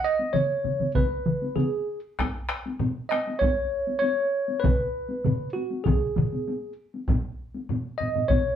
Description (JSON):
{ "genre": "japanese traditional, taiko drum ensemble", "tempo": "98 BPM", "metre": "4/4", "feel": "straight", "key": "C# suspended pentatonic", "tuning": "A4 = 440 Hz", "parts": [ { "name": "tine electric piano", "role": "melody", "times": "0.0-8.6 s", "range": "F#4 to D#5", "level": "-26 LUFS", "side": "right 1 dB", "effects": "slow stereo tremolo" }, { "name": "solo taiko drums", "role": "percussion", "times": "0.2-8.4 s", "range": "none", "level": "-32 LUFS", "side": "left 4 dB", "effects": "none" }, { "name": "taiko ensemble", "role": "percussion", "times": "0.3-6.3 s", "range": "none", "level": "-27 LUFS", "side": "right 1 dB", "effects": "none" }, { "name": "taiko ensemble", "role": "percussion", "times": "1.0-8.4 s", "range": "none", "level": "-27 LUFS", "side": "equal", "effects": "none" }, { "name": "taiko ensemble", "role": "percussion", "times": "2.2-8.4 s", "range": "none", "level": "-30 LUFS", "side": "left 1 dB", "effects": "none" } ], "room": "wet studio reverb, RT60 0.6 s", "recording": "band playing live in one room", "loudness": "-24 LUFS", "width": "side -9 dB against mid", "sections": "0.0-8.6 A section", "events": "none", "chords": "none", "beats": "0.35 0.96 1.57 | 2.19 2.80 3.41 4.02 | 4.63 5.25 5.86 6.47 | 7.08 7.69 8.30" }